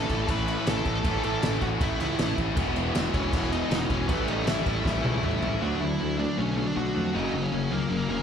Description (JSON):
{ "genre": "punk rock", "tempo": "158 BPM", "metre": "4/4", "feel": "straight", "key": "unclear", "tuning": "A4 = 440 Hz", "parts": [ { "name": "bluesy overdriven lead guitar", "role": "melody", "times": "0.0-8.2 s", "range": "A#3 to B5", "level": "-32 LUFS", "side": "equal", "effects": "distortion, digital delay" }, { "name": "biting overdriven guitar", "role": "riff", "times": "0.0-8.2 s", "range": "E2 to D4", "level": "-31 LUFS", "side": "left 9 dB", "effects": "slapback echo" }, { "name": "crunchy overdriven guitar", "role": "riff", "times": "0.0-8.2 s", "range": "F#2 to E4", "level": "-32 LUFS", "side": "right 10 dB", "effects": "slapback echo" }, { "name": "tight distorted guitar", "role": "riff", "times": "0.0-8.2 s", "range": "E2 to D4", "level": "-35 LUFS", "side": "equal", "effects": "distortion, slapback echo" }, { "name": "fuzz picked electric bass", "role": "bass", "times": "0.0-8.2 s", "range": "E1 to E#2", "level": "-31 LUFS", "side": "equal", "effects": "overdrive" }, { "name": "loose indie drum kit", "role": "drums", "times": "0.1-5.5 s", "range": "crash cymbal, kick drum, snare drum, toms", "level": "-29 LUFS", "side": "equal", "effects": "none" } ], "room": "small room ambience", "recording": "live gig heard through the venue's PA, club reverb", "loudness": "-24 LUFS", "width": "side -8 dB against mid", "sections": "0.0-5.6 A section; 5.6-8.2 B section", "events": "drum fill 4.9-5.6; half time 5.6-8.2", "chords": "0.0 A; 2.6 E; 4.1 A7; 5.6 D; 7.1 F#", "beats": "0.29 0.67 | 1.05 1.43 1.81 2.19 | 2.57 2.95 3.33 3.71 | 4.10 4.48 4.86 5.24 | 5.62 6.00 6.38 6.76 | 7.14 7.52 7.91" }